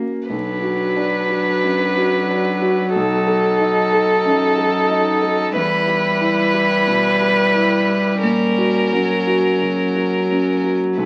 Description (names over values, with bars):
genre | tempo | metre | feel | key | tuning
neoclassical piano and strings | 90 BPM | 4/4 | rubato | B harmonic minor | A4 = 440 Hz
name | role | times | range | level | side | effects
warm cello | second line | 0.0-11.1 s | F#3 to G3 | -25 LUFS | equal | none
dark concert grand piano | accompaniment | 0.0-11.1 s | B1 to A4 | -24 LUFS | equal | none
rich violin | melody | 0.3-11.1 s | A4 to B4 | -21 LUFS | equal | none
dark viola | accompaniment | 0.3-11.1 s | C#4 to E4 | -28 LUFS | equal | none
room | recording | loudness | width
moderate studio reverb, RT60 0.5 s | very old 78 rpm record, vinyl crackle | -17 LUFS | mono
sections
0.3-11.1 A section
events
none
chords
0.3 Bm; 2.9 B7; 5.5 Em; 8.2 F#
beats
| 0.29 0.96 1.63 2.29 | 2.94 3.59 4.24 4.89 | 5.55 6.21 6.87 7.54 | 8.23 8.92 9.62 10.30 | 10.99